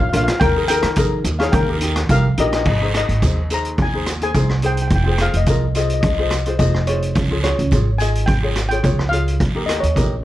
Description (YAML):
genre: calypso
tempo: 107 BPM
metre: 4/4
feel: straight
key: Ab major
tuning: A4 = 440 Hz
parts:
  - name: steel pan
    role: melody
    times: 0.0-10.2 s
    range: Ab4 to Bb5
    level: -23 LUFS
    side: left 3 dB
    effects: plate reverb
  - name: ukulele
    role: accompaniment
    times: 0.0-10.1 s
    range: Eb4 to Eb5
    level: -24 LUFS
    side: left 2 dB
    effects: none
  - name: upright bass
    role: bass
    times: 0.0-10.2 s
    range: F1 to Eb3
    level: -19 LUFS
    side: right 1 dB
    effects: none
  - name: street-band drum kit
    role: drums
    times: 0.1-10.1 s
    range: crash cymbal, hi-hat, kick drum, rim click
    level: -20 LUFS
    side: equal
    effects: none
  - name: guiro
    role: percussion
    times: 0.4-10.1 s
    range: none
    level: -31 LUFS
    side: right 4 dB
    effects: none
room: light reverb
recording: worn, warbling old tape, cassette tape, warbly pitch drift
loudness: -15 LUFS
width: side -14 dB against mid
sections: 0.0-2.7 A section; 2.7-10.2 B section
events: none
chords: 0.4 Ebsus4; 1.5 Eb; 2.7 Ab; 4.9 Fm; 7.2 Db; 9.4 Eb7